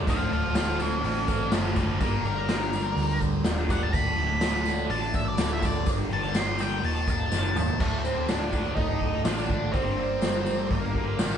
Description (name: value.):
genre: psychedelic rock.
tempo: 124 BPM.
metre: 4/4.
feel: straight.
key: D phrygian dominant.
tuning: A4 = 440 Hz.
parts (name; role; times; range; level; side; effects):
overdriven combo organ; sustained chords; 0.0-11.4 s; A3 to D5; -39 LUFS; right 5 dB; none.
thick fuzz guitar; riff; 0.0-11.4 s; D2 to G3; -30 LUFS; left 1 dB; distortion, phaser.
hollow-body short-scale picked electric bass; bass; 0.0-11.4 s; D1 to D2; -31 LUFS; equal; none.
octave-fuzz lead guitar; melody; 0.1-11.4 s; A3 to C6; -30 LUFS; equal; distortion.
raw garage drum kit; drums; 0.1-11.3 s; crash cymbal, hi-hat, kick drum, snare drum, toms; -28 LUFS; equal; none.
tambourine; percussion; 0.1-11.4 s; none; -44 LUFS; left 5 dB; none.
room: light reverb.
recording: band playing live in one room, nothing above 11.0 kHz.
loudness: -24 LUFS.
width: side -8 dB against mid.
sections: 0.0-7.8 A section; 7.8-11.4 B section.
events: lead electric guitar solo 0.0-7.8; drum fill 7.3-7.8.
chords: 0.1 D; 2.0 Gm; 3.9 D; 5.9 Gm; 6.8 Eb; 7.8 D; 9.7 Gm.